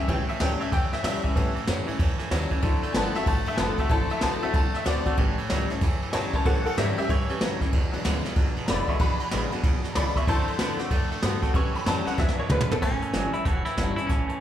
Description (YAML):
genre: rockabilly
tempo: 188 BPM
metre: 4/4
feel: swing 63% on 8ths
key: A mixolydian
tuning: A4 = 440 Hz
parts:
  - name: honky-tonk upright piano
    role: accompaniment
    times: 0.0-14.4 s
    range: F#3 to C#6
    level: -30 LUFS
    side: left 2 dB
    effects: none
  - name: picked steel-string acoustic guitar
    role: accompaniment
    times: 0.0-14.4 s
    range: E2 to F#4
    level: -32 LUFS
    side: left 4 dB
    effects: none
  - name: twangy electric guitar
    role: riff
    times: 0.0-14.4 s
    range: E2 to B3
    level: -32 LUFS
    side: right 3 dB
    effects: spring reverb
  - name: upright bass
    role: bass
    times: 0.1-14.3 s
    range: E1 to B2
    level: -31 LUFS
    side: equal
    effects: none
  - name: jazz brush drum kit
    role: drums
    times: 0.1-14.3 s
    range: crash cymbal, hi-hat, kick drum, ride cymbal, snare drum, toms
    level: -26 LUFS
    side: equal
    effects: none
  - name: clean electric guitar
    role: melody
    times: 12.8-14.4 s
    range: C#4 to F#4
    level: -29 LUFS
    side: right 1 dB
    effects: phaser
room: moderate large studio reverb, RT60 1.3 s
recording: band playing live in one room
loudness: -23 LUFS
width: side -11 dB against mid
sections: 0.0-12.8 A section; 12.8-14.4 B section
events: honky-tonk piano solo 0.0-12.8; drum fill 12.2-12.8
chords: 0.0 A7; 2.6 D7; 5.2 A7; 7.7 E7; 10.3 D7; 11.5 A7; 12.2 E7; 12.8 A7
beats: | 0.08 0.40 0.72 1.04 | 1.36 1.68 2.00 2.31 | 2.63 2.95 3.27 3.59 | 3.91 4.23 4.54 4.86 | 5.18 5.50 5.82 6.14 | 6.46 6.77 7.09 7.41 | 7.73 8.05 8.37 8.68 | 9.00 9.32 9.64 9.96 | 10.27 10.59 10.91 11.23 | 11.55 11.86 12.18 12.50 | 12.82 13.14 13.46 13.78 | 14.09